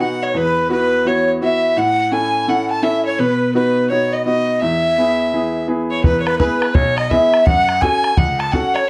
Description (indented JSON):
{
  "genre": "celtic folk, Celtic hornpipe",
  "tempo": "169 BPM",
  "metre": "4/4",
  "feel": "swing 63% on 8ths",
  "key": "E major",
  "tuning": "A4 = 440 Hz",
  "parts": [
    { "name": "breathy mellow wooden flute", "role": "melody", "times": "0.0-8.9 s", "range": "B4 to A5", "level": "-20 LUFS", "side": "equal", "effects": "none" },
    { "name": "rich fiddle", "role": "second line", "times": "0.0-8.9 s", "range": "B4 to A5", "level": "-25 LUFS", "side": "equal", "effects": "none" },
    { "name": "bright upright piano", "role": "accompaniment", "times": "0.0-8.8 s", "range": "B1 to A4", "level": "-22 LUFS", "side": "equal", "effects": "none" },
    { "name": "bodhran", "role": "percussion", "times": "6.0-8.8 s", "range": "none", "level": "-21 LUFS", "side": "equal", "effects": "none" }
  ],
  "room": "moderate studio reverb, RT60 0.6 s",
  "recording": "cassette tape",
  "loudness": "-17 LUFS",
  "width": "mono",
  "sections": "0.0-6.0 A section; 6.0-8.9 A section",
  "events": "none",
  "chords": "0.4 Esus2; 1.8 A; 3.2 B; 4.6 E; 7.5 F#m"
}